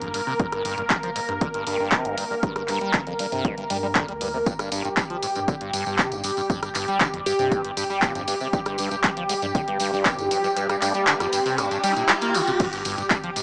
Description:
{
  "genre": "acid house",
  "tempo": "118 BPM",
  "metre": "4/4",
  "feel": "straight",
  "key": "G minor",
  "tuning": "A4 = 441 Hz",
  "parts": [
    { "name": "lush unison pad", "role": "sustained chords", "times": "0.0-13.4 s", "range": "G4 to Bb4", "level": "-26 LUFS", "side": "equal", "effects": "chorus, phaser, sidechain pumping" },
    { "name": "liquid acid bass", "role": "riff", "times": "0.0-13.4 s", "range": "F2 to Bb3", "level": "-28 LUFS", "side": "equal", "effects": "phaser, overdrive, analog chorus, vintage 12-bit sampler grit, sidechain pumping, analog delay" },
    { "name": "saturated sub bass", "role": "bass", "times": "0.0-13.3 s", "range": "G1 to G2", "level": "-40 LUFS", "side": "equal", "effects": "tube saturation, sidechain pumping" },
    { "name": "punchy analog drum machine", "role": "drums", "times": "0.0-13.4 s", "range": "crash cymbal, handclaps, hi-hat, rim click", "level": "-24 LUFS", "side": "equal", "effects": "none" },
    { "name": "electronic kick drum", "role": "drums", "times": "0.4-13.2 s", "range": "none", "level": "-26 LUFS", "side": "equal", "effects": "none" },
    { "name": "tambourine", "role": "percussion", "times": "4.5-13.4 s", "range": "none", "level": "-33 LUFS", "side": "equal", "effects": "none" },
    { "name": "plucky unison lead", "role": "melody", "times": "7.3-7.8 s", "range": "G4", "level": "-28 LUFS", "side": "equal", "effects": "tape echo" },
    { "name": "riser", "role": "sound effects", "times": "10.3-12.6 s", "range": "none", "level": "-30 LUFS", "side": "equal", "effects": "none" }
  ],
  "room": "moderate studio ambience, RT60 0.5 s",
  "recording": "dry, gritty hardware recording, cassette tape, small speaker sound",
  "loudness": "-21 LUFS",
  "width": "side -36 dB against mid",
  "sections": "0.0-12.6 A section",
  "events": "riser 10.3-12.6",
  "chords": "0.0 Gm; 12.6 N.C.",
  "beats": "| 0.40 0.90 1.41 1.92 | 2.43 2.94 3.45 3.96 | 4.46 4.97 5.48 5.99 | 6.50 7.01 7.51 8.02 | 8.53 9.04 9.55 10.06 | 10.56 11.07 11.58 12.09 | 12.60 13.11"
}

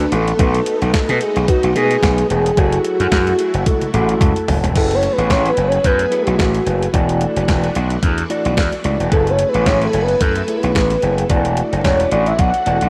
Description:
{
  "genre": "early-eighties boogie funk",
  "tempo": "110 BPM",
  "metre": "4/4",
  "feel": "swing 56% on 16ths",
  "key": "F# minor",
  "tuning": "A4 = 441 Hz",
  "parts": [
    { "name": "soft octave-layered synth lead", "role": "melody", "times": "0.0-12.9 s", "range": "D4 to F#5", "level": "-20 LUFS", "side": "equal", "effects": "chorus, tremolo, cassette tape" },
    { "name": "mellow tine electric piano", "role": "accompaniment", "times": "0.0-12.9 s", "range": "G#3 to A5", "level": "-26 LUFS", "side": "equal", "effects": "cassette tape" },
    { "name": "string machine, violins", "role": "sustained chords", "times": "0.0-12.9 s", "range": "E3 to G#5", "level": "-31 LUFS", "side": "equal", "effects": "ensemble chorus, cassette tape" },
    { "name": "direct-recorded clean electric guitar", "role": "riff", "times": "0.0-12.9 s", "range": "A3 to B4", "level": "-36 LUFS", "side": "equal", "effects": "none" },
    { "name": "gritty slap bass", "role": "bass", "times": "0.0-12.9 s", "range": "E1 to B2", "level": "-20 LUFS", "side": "equal", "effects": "overdrive, transformer saturation" },
    { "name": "crisp 8-bit digital drum machine", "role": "drums", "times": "0.0-12.9 s", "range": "crash cymbal, hi-hat, kick drum, snare drum, toms", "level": "-21 LUFS", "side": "equal", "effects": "overdrive, cassette tape" }
  ],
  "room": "light reverb, digital ambience",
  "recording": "home recording on cassette",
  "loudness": "-16 LUFS",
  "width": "mono",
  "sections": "0.0-4.8 A section; 4.8-12.9 B section",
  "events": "drum fill 3.7-4.8; tine electric piano fill 3.7-4.8; soft synth lead solo 4.8-12.9",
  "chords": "0.4 B7; 2.6 F#m9; 4.8 F#m11; 6.9 E9sus4; 9.1 F#m11; 11.3 E9sus4",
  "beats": "| 0.39 0.94 1.48 2.03 | 2.57 3.12 3.67 4.21 | 4.76 5.30 5.85 6.39 | 6.94 7.48 8.03 8.57 | 9.12 9.66 10.21 10.76 | 11.30 11.85 12.39"
}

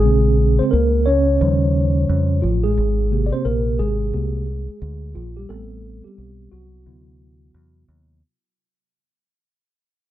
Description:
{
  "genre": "hip hop, jazz-hop",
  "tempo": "88 BPM",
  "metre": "4/4",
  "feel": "swing 62% on 16ths",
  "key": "unclear",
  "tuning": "A4 = 440 Hz",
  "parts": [
    { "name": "mellow tine electric piano", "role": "accompaniment", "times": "0.0-8.2 s", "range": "C3 to D5", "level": "-20 LUFS", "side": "equal", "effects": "fast stereo tremolo, plate reverb" },
    { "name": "deep dub fingered electric bass", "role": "bass", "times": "0.0-8.2 s", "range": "Ab1 to F2", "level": "-19 LUFS", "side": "equal", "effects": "none" }
  ],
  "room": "moderate studio ambience, RT60 0.5 s",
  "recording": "none",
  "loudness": "-16 LUFS",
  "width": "side -13 dB against mid",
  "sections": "0.0-8.2 A section",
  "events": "fade-out 0.0-8.2; tine electric piano solo 0.0-8.2",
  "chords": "0.0 Bbm9; 1.4 Eb13; 2.8 Abmaj9; 5.5 Am7; 6.9 D13",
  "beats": "| 0.05 0.73 1.41 2.09 | 2.77 3.46 4.14 4.82 | 5.50 6.18 6.87 7.55"
}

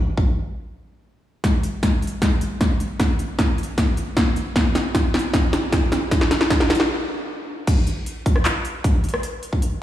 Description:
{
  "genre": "future bass",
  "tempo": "154 BPM",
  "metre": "4/4",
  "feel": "half-time",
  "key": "none",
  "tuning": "none",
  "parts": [
    { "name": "electronic kick drum", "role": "drums", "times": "0.2-9.6 s", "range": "none", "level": "-20 LUFS", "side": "equal", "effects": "none" },
    { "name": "big-room dance drum kit", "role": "drums", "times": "1.4-9.7 s", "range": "crash cymbal, handclaps, hi-hat, rim click, snare drum", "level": "-21 LUFS", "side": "equal", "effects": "none" }
  ],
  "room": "moderate huge ambient reverb, RT60 3.7 s",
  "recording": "played on a big sound system in a bare room, stone room reverb, studio ambience",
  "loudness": "-18 LUFS",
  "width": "side -12 dB against mid",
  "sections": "0.0-1.4 A section; 1.4-7.7 B section; 7.7-9.8 C section",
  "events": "build-up 1.4-7.7; drum fill 1.4-6.9; stop 6.9-7.7; drop 7.7-9.8",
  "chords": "none",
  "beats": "0.27 0.66 1.05 | 1.44 1.83 2.22 2.61 | 3.00 3.39 3.78 4.17 | 4.56 4.95 5.34 5.73 | 6.12 6.50 6.89 7.28 | 7.67 8.06 8.45 8.84 | 9.23 9.62"
}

